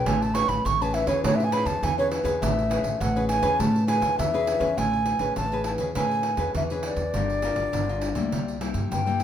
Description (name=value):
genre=samba and choro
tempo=102 BPM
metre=4/4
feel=straight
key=A major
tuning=A4 = 440 Hz
part: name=reedy baroque flute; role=melody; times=0.0-9.2 s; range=C#5 to C#6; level=-26 LUFS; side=right 1 dB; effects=none
part: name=nylon-string guitar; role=accompaniment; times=0.0-9.2 s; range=G2 to B4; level=-29 LUFS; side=left 3 dB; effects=none
part: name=upright bass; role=bass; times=0.0-9.2 s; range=G1 to A2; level=-28 LUFS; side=equal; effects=none
part: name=pandeiro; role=percussion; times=0.1-9.2 s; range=none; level=-31 LUFS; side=right 4 dB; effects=none
room=moderate studio reverb, RT60 0.5 s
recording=minimal, uncompressed stereo recording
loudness=-22 LUFS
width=side -9 dB against mid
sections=0.0-4.8 A section; 4.8-9.2 B section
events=flute solo 0.0-4.8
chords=0.1 Amaj9; 7.1 Gm7; 8.3 C7